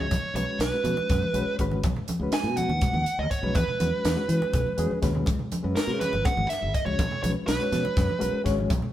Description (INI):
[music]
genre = electric jazz fusion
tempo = 244 BPM (eighths)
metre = 7/8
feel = straight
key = unclear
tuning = A4 = 440 Hz
[part]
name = dark smooth lead guitar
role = melody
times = 0.0-8.4 s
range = A#4 to G#5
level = -28 LUFS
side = right 3 dB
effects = overdrive
[part]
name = reed electric piano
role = accompaniment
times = 0.0-8.7 s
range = G#3 to F#5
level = -32 LUFS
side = left 3 dB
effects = overdrive, fast tremolo
[part]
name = modern bright fingered electric bass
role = bass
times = 0.0-8.8 s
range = G#1 to E3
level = -29 LUFS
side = equal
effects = none
[part]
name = crisp fusion drum kit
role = drums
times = 0.1-8.8 s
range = hi-hat, kick drum, snare drum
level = -29 LUFS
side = equal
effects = none
[part]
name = congas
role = percussion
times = 0.1-8.9 s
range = none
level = -32 LUFS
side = right 1 dB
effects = none
[sound]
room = moderate stone room reverb, RT60 1.3 s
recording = band playing live in one room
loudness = -23 LUFS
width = side -12 dB against mid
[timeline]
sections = 0.0-8.9 A section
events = reed electric piano fill 1.1-1.8; drum fill 4.7-5.3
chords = 0.0 Bsus2; 1.8 G#m7/B; 3.5 E; 5.3 C#5; 7.0 Bsus2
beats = | 0.11 0.36 0.60 0.85 1.09 1.34 1.58 | 1.83 2.08 2.32 2.57 2.81 3.06 3.30 | 3.55 3.79 4.04 4.29 4.53 4.78 5.02 | 5.27 5.51 5.76 6.00 6.25 6.49 6.74 | 6.98 7.23 7.47 7.72 7.96 8.21 8.45 | 8.70